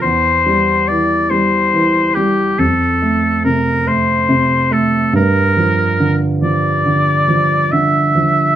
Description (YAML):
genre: classical, romantic duo for oboe and grand piano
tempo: 47 BPM (dotted quarters)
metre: 12/8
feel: rubato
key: unclear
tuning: A4 = 439 Hz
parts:
  - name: warm oboe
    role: melody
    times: 0.0-8.6 s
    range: G4 to E5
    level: -14 LUFS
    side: left 2 dB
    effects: none
  - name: dark grand piano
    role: accompaniment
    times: 0.0-8.6 s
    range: E2 to A3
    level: -15 LUFS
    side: right 1 dB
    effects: none
room: light reverb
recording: none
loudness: -12 LUFS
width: side -10 dB against mid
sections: 0.0-8.6 A section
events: none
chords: 0.0 C/E; 2.6 F; 5.2 Gm7